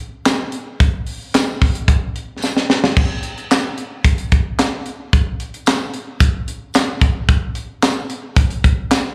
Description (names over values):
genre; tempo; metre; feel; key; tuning
funk; 111 BPM; 4/4; straight; none; none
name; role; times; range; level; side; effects
tight funk drum kit; drums; 0.3-9.0 s; crash cymbal, handclaps, hi-hat, kick drum, snare drum; -18 LUFS; equal; none
tambourine; percussion; 0.3-9.0 s; none; -36 LUFS; equal; none
room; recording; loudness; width
moderate lush hall reverb, RT60 1.9 s, small room ambience; live gig heard through the venue's PA, club reverb; -18 LUFS; mono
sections
0.0-3.0 A section; 3.0-9.1 B section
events
drum fill 2.4-3.0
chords
none